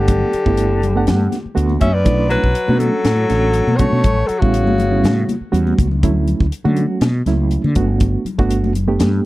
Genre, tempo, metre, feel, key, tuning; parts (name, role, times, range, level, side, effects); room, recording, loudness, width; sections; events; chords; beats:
electric jazz fusion; 121 BPM; 4/4; straight; A4 = 440 Hz
breathy alto saxophone; melody; 0.0-5.4 s; F#4 to E5; -20 LUFS; equal
breathy tenor saxophone; second line; 0.0-5.4 s; C#3 to C#4; -22 LUFS; left 4 dB
bright reed electric piano; accompaniment; 0.0-9.3 s; F#3 to F#5; -20 LUFS; right 4 dB; fast tremolo
mellow fretless electric bass; bass; 0.0-9.2 s; F#1 to D3; -17 LUFS; equal
crisp fusion drum kit; drums; 0.1-9.1 s; hi-hat, kick drum, snare drum; -18 LUFS; equal
congas; percussion; 0.1-9.1 s; -24 LUFS; left 4 dB
little or no reverb; dry, close 1970s-style studio recording; -14 LUFS; side -18 dB against mid
0.0-9.3 A section
drum fill 5.7-6.0
0.0 Gmaj9; 2.1 Bm11; 4.0 A9; 6.0 Dmaj9; 7.8 Gmaj9
| 0.08 0.58 1.07 1.57 | 2.06 2.56 3.05 3.55 | 4.05 4.54 5.04 5.53 | 6.03 6.53 7.02 7.52 | 8.01 8.51 9.01